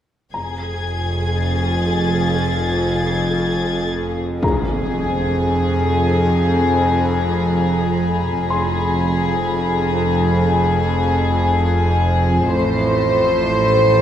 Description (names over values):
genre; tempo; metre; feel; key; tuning
cinematic, suspense film score; 59 BPM; 4/4; straight; unclear; A4 = 440 Hz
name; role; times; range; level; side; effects
rich studio violin section; melody; 0.3-14.0 s; Ab4 to C5; -21 LUFS; left 2 dB; none
dark studio double bass section; bass; 0.3-14.0 s; F1 to A1; -24 LUFS; right 2 dB; none
warm studio cello section; bass; 0.3-14.0 s; F2 to A2; -22 LUFS; right 2 dB; none
bowed-like drone; drone; 0.9-14.0 s; A1 to F2; -21 LUFS; equal; built-in reverb
clear grand piano; texture; 0.3-12.6 s; Ab4 to C6; -29 LUFS; left 3 dB; none
warm studio violin section; texture; 0.3-12.0 s; Ab5 to A6; -27 LUFS; left 4 dB; none
impact; sound effects; 4.4-8.5 s; none; -24 LUFS; left 1 dB; none
room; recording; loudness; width
moderate scoring stage reverb, RT60 1.5 s; none; -16 LUFS; side -10 dB against mid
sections
0.3-4.4 A section; 4.4-14.0 B section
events
impact 4.4-8.5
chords
0.3 Fm; 12.5 Am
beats
| 0.34 1.35 2.35 3.38 | 4.43 5.45 6.46 7.48 | 8.50 9.51 10.52 11.53 | 12.54 13.55